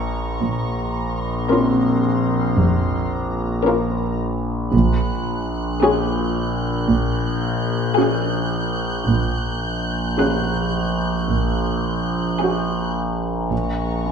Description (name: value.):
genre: cinematic, suspense film score.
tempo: 55 BPM.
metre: 4/4.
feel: straight.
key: unclear.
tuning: A4 = 440 Hz.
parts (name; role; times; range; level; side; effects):
muted chamber violin section; melody; 0.0-13.3 s; Ab4 to Bb4; -24 LUFS; left 6 dB; none.
muted chamber viola section; accompaniment; 0.0-13.3 s; Db4 to Gb4; -22 LUFS; right 2 dB; none.
overtone-sweeping drone; drone; 0.0-14.1 s; Bb1; -21 LUFS; equal; chorus, built-in reverb.
felt-muted upright piano; texture; 0.0-14.1 s; C4 to Gb6; -26 LUFS; equal; none.
muted chamber violin section; texture; 0.0-14.1 s; Bb5 to G6; -31 LUFS; equal; none.
muted chamber cello section; bass; 0.4-14.1 s; F2 to Bb2; -22 LUFS; right 2 dB; none.
muted chamber double bass section; bass; 0.4-14.1 s; F1 to Bb1; -24 LUFS; right 2 dB; none.
room: wet scoring stage reverb, RT60 1.9 s.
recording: minimal, uncompressed stereo recording.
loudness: -18 LUFS.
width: side -6 dB against mid.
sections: 0.0-14.1 A section.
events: none.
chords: 0.0 Bbm; 4.7 Gbsus2/Bb; 13.5 Bbm.